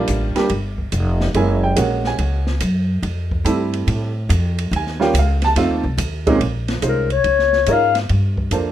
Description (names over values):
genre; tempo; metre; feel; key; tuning
jazz, small-group swing and bop; 142 BPM; 4/4; swing 66% on 8ths; unclear; A4 = 440 Hz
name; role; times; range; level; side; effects
warm upright piano; accompaniment; 0.0-8.7 s; Bb2 to A5; -19 LUFS; right 3 dB; none
upright bass; bass; 0.0-8.7 s; F1 to A2; -19 LUFS; equal; none
open jazz drum kit; drums; 0.1-8.6 s; hi-hat, kick drum, ride cymbal, snare drum; -27 LUFS; right 1 dB; none
breathy clarinet; melody; 6.9-8.0 s; Bb4 to F5; -16 LUFS; left 9 dB; none
room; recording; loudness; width
light reverb; minimal, uncompressed stereo recording; -16 LUFS; side -11 dB against mid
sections
0.0-6.4 A section; 6.4-8.7 A section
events
clarinet solo 6.4-8.7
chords
0.0 Gm9; 1.3 F#9; 3.0 Fmaj9; 4.7 Eb9; 5.6 F7; 6.4 Bbm11; 8.1 Gm11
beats
0.08 0.50 0.92 | 1.34 1.77 2.19 2.61 | 3.03 3.45 3.87 4.29 | 4.71 5.13 5.56 5.98 | 6.40 6.82 7.25 7.67 | 8.09 8.51